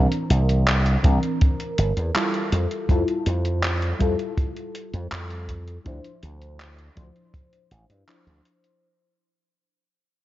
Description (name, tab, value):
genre	vaporwave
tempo	81 BPM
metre	4/4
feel	straight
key	D minor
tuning	A4 = 440 Hz
part	mellow FM electric piano	accompaniment	0.0-8.8 s	E3 to C5	-27 LUFS	left 1 dB	phaser, analog chorus, analog delay
part	slap bass with an envelope filter	bass	0.0-8.4 s	G1 to G2	-22 LUFS	equal	none
part	detuned 8-bit digital drum machine	drums	0.1-8.8 s	handclaps, hi-hat	-28 LUFS	equal	gated reverb
part	kick drum	drums	1.0-7.5 s	none	-20 LUFS	equal	none
room	light reverb, digital ambience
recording	cassette tape, nothing above 7.6 kHz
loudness	-20 LUFS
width	side -15 dB against mid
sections	0.0-8.8 A section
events	fade-out 0.0-8.8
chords	0.0 C9; 2.5 Fmaj9; 5.9 Dm9